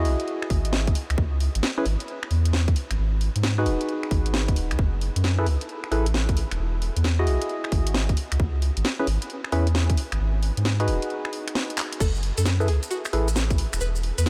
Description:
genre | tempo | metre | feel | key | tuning
UK garage, two-step garage | 133 BPM | 4/4 | swing 65% on 16ths | F# dorian | A4 = 439 Hz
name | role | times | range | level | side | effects
percussive organ stab | stabs | 0.0-13.3 s | C#4 to D#5 | -32 LUFS | equal | chorus, tape echo
soft dub sub bass | bass | 0.0-14.3 s | D#1 to G#2 | -26 LUFS | equal | sidechain pumping
garage drum kit | drums | 0.1-14.3 s | crash cymbal, finger snaps, handclaps, hi-hat, snare drum | -33 LUFS | equal | studio ambience
electronic kick drum | drums | 0.5-13.6 s | none | -26 LUFS | equal | studio ambience
string-like resonator pluck | melody | 12.0-14.3 s | F#4 to B4 | -36 LUFS | equal | chorus, cassette tape, tape echo
maracas | percussion | 12.0-14.3 s | none | -37 LUFS | equal | none
room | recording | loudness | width
light reverb | none | -24 LUFS | mono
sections
0.0-14.3 A section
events
break 11.1-12.0; drum fill 11.8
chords
0.0 Emaj9; 1.0 C#m; 2.8 G#m7; 4.8 F#m11; 6.6 Emaj9; 8.2 C#m7; 10.0 G#m7; 12.0 F#m11

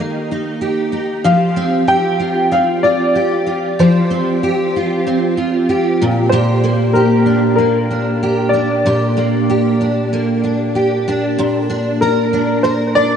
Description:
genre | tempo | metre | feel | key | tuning
pop | 95 BPM | 4/4 | straight | unclear | A4 = 436 Hz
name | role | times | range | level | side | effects
warm upright piano | melody | 0.0-13.2 s | Bb4 to G5 | -18 LUFS | left 1 dB | wide subtle chorus, analog delay
picked steel-string acoustic guitar | accompaniment | 0.0-13.2 s | Bb2 to Bb4 | -14 LUFS | right 1 dB | ensemble chorus
room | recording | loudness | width
wet huge ambient reverb, RT60 6.2 s | dreamy mix soaked in reverb, nothing above 10.3 kHz | -13 LUFS | side -8 dB against mid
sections
0.0-11.4 A section; 11.4-13.2 B section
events
none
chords
0.0 Eb; 1.2 Fsus2; 6.0 Bb6; 11.4 Bb

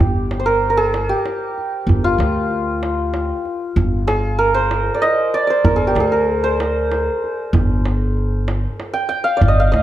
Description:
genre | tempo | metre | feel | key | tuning
Persian modal ensemble | 96 BPM | 3/4 | straight | G dastgah shur | A4 = 440 Hz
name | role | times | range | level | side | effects
santur | melody | 0.0-9.8 s | F4 to G5 | -18 LUFS | right 1 dB | none
upright bass | bass | 0.0-9.8 s | G1 to D2 | -20 LUFS | equal | none
tombak | percussion | 0.0-9.8 s | none | -20 LUFS | right 2 dB | none
room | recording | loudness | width
light reverb | dark, warm production | -16 LUFS | side -13 dB against mid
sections
0.0-9.8 A section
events
none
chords
none

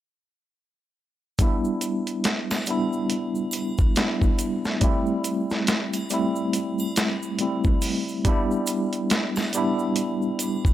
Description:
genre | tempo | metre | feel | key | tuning
trip hop | 70 BPM | 4/4 | swing 60% on 16ths | E minor | A4 = 441 Hz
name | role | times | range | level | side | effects
bright tine electric piano | accompaniment | 1.4-10.7 s | G3 to E4 | -24 LUFS | equal | fast stereo tremolo, harmonic tremolo, tape echo
dusty soul sampler-style drum kit | drums | 1.4-10.7 s | hi-hat, kick drum, snare drum | -23 LUFS | equal | overdrive
egg shaker and triangle | percussion | 1.4-10.7 s | none | -37 LUFS | right 3 dB | none
room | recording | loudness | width
light reverb, digital ambience | none | -22 LUFS | side -13 dB against mid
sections
1.4-10.7 A section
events
none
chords
1.4 Em7; 4.8 Am7; 8.3 Em7

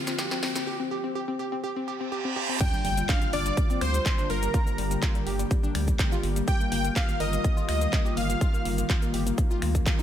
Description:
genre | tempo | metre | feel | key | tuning
progressive house | 124 BPM | 4/4 | straight | G minor | A4 = 440 Hz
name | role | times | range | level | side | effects
airy breathy pad | sustained chords | 0.0-10.0 s | D3 to G4 | -34 LUFS | equal | chorus, sidechain pumping
glassy wavetable pluck | arpeggios | 0.0-10.0 s | G3 to Bb4 | -32 LUFS | left 3 dB | chorus, sidechain pumping, tape echo
round analog bass | bass | 0.0-9.8 s | F1 to D2 | -28 LUFS | equal | tube saturation, sidechain pumping, high-pass filter
riser, reverse cymbal and impact | sound effects | 0.0-4.5 s | none | -35 LUFS | right 3 dB | none
big-room dance drum kit | drums | 0.1-10.0 s | cabasa, crash cymbal, finger snaps, handclaps, hi-hat, snare drum, toms | -34 LUFS | equal | high-pass filter on snare, high-pass filter on hats, high-pass filter on perc, high-pass filter on toms, high-pass filter on cymbals
plucky unison lead | melody | 2.6-9.1 s | Bb4 to G5 | -31 LUFS | equal | wide subtle chorus, tape echo
soft supersaw | second line | 2.6-9.1 s | Bb5 to G6 | -37 LUFS | equal | sidechain pumping, tape echo
electronic kick drum | drums | 2.6-10.0 s | none | -25 LUFS | equal | none
room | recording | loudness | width
digital ambience | none | -24 LUFS | side -10 dB against mid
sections
0.0-2.6 A section; 2.6-10.0 B section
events
build-up 0.0-2.6; drum fill 0.0-0.7, 2.2-2.6; riser 0.0-0.7; filter sweep on synth arpeggio sound 0.0-2.6; break 0.7-2.6; reverse cymbal 1.9-2.6; drop 2.6-10.0; impact 2.6-4.5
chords
0.0 Bb; 2.6 Gm7; 6.5 Ebadd9/G

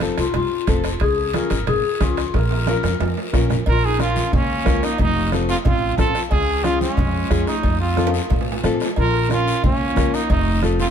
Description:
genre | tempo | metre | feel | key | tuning
latin, cumbia | 181 BPM | 4/4 | straight | Bb minor | A4 = 440 Hz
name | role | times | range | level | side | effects
nylon-string guitar | accompaniment | 0.0-10.9 s | C4 to Bb4 | -26 LUFS | left 5 dB | none
upright bass | bass | 0.0-10.8 s | F1 to A2 | -23 LUFS | right 1 dB | none
bombo | percussion | 0.0-10.8 s | none | -22 LUFS | equal | none
congas | percussion | 0.0-10.9 s | none | -28 LUFS | right 2 dB | none
guiro | percussion | 0.0-10.9 s | none | -33 LUFS | left 4 dB | none
timbales and cowbell | percussion | 0.0-10.5 s | none | -31 LUFS | right 3 dB | none
breathy clarinet | second line | 0.2-10.9 s | Ab3 to Bb4 | -25 LUFS | left 5 dB | none
breathy trumpet | melody | 3.7-10.9 s | Db4 to Bb4 | -23 LUFS | right 4 dB | none
room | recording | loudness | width
light reverb | heard from further back in the room | -17 LUFS | side -8 dB against mid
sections
0.0-3.7 A section; 3.7-10.9 B section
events
clarinet solo 0.0-3.7; drum fill 2.3-3.7, 8.0-9.0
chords
0.0 F; 1.0 Db; 2.3 Bbm; 5.0 F7; 6.3 Db; 7.6 F; 9.0 Bbm; 10.3 F7

